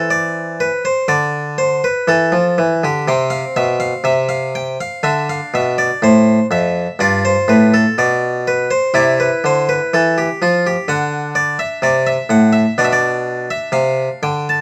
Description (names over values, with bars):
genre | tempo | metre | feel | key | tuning
classical, baroque-style suite movement for harpsichord | 62 BPM | 4/4 | rubato | C major | A4 = 441 Hz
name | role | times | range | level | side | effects
harpsichord | solo | 0.0-14.6 s | F2 to A5 | -16 LUFS | equal | none
room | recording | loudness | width
light reverb | dark, warm production | -16 LUFS | mono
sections
0.0-14.6 A section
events
none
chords
0.0 Cmaj9; 1.1 D7sus2; 3.1 Cadd11; 5.0 Dm; 7.0 G7; 8.9 C; 10.9 D5; 12.8 Bdim